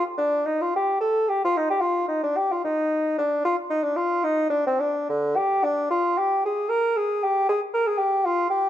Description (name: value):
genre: classical, baroque-style fantasia for unaccompanied bassoon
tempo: 75 BPM (dotted quarters)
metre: 12/8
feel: rubato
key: unclear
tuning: A4 = 440 Hz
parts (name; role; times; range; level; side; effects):
- mellow bassoon; solo; 0.0-8.7 s; D3 to Bb4; -21 LUFS; equal; none
room: moderate recital hall reverb, RT60 1.6 s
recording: close, detailed microphones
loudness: -21 LUFS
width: side -11 dB against mid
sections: 0.0-8.7 A section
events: none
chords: none